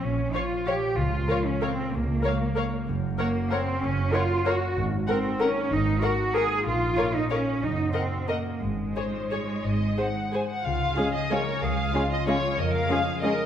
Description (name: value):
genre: classical, orchestral ballroom waltz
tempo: 168-205 BPM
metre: 3/4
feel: rubato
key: Db major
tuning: A4 = 440 Hz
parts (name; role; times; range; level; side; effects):
- concert harp; arpeggios; 0.0-13.5 s; Gb2 to Eb5; -32 LUFS; left 6 dB; none
- muted chamber cello section; bass; 0.0-13.5 s; Ab3 to Bb4; -28 LUFS; right 2 dB; none
- muted studio double bass section; bass; 0.0-12.8 s; Gb1 to F2; -30 LUFS; right 3 dB; none
- muted chamber violin section; melody; 0.3-13.5 s; C5 to Ab5; -32 LUFS; left 2 dB; none
- muted studio violin section; second line; 0.3-13.3 s; F4 to Eb5; -32 LUFS; left 3 dB; none
- muted symphonic viola section; accompaniment; 0.4-13.3 s; Ab3 to Db5; -32 LUFS; equal; none
- dark French horn section; sustained chords; 11.0-13.3 s; Ab3 to Db4; -33 LUFS; left 2 dB; none
room: wet concert hall reverb, RT60 1.7 s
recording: none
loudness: -23 LUFS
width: side -9 dB against mid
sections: 0.0-10.7 A section; 10.7-13.5 B section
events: none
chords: 0.0 Bbm; 1.0 Bbm/Db; 2.9 Gb; 4.8 Ab9; 6.7 Bbm; 7.6 Ebm/Gb; 8.6 Db/Ab; 9.6 Ab; 10.7 Db; 12.6 Db/F